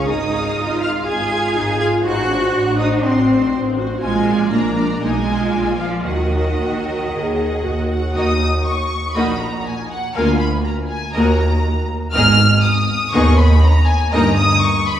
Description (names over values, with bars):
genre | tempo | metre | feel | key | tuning
quick classical-period movement for string orchestra | 121 BPM | 4/4 | straight | Eb minor | A4 = 440 Hz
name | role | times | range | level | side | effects
clear symphonic violin section | melody | 0.0-15.0 s | C5 to F6 | -22 LUFS | left 2 dB | none
clear symphonic violin section | second line | 0.0-14.4 s | Gb4 to Ab6 | -26 LUFS | left 1 dB | none
warm symphonic viola section | accompaniment | 0.0-14.4 s | Bb3 to Ab4 | -22 LUFS | left 1 dB | none
rich symphonic cello section | bass | 0.0-14.5 s | D2 to Ab4 | -20 LUFS | right 1 dB | none
clear symphonic double bass section | bass | 0.1-14.5 s | G1 to Eb2 | -20 LUFS | right 1 dB | none
room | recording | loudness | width
wet church reverb, RT60 2.8 s | recorded in a church or concert hall, small room ambience | -15 LUFS | side -10 dB against mid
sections
0.0-8.2 A section; 8.2-15.0 B section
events
none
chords
0.1 Fm7/Ab; 2.0 Adim7; 4.0 Bb; 5.0 Abm/Cb; 5.5 Bb7; 6.1 Ebm; 10.2 Bb/D; 11.2 Ebm; 12.1 Abm; 14.1 Eb/G